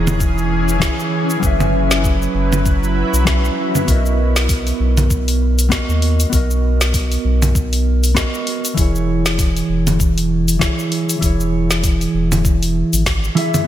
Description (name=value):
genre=sunset chillout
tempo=98 BPM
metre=4/4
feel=swing 57% on 16ths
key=B major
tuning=A4 = 442 Hz
part: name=mellow electric guitar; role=accompaniment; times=0.0-13.7 s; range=E3 to E5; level=-19 LUFS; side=right 1 dB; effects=auto-pan, tape echo
part: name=shimmering ambient pad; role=sustained chords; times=0.0-3.9 s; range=E3 to B4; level=-23 LUFS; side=equal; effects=chorus, built-in reverb
part: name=round analog bass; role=bass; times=0.0-13.3 s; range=E1 to D#2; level=-17 LUFS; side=equal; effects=none
part: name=deep house drum kit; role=drums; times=0.1-13.6 s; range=congas, hi-hat, shaker, snare drum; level=-21 LUFS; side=right 1 dB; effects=none
part: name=electronic kick drum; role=drums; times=0.2-13.2 s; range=none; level=-18 LUFS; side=equal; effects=none
room=light reverb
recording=none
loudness=-14 LUFS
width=side -12 dB against mid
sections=0.0-3.9 A section; 3.9-13.7 A section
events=none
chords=0.0 E6; 1.4 F#7sus4; 3.9 Bmaj7; 8.8 E6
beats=0.21 0.82 | 1.43 2.04 2.65 3.27 | 3.88 4.49 5.10 5.72 | 6.33 6.94 7.55 8.16 | 8.78 9.39 10.00 10.61 | 11.23 11.84 12.45 13.06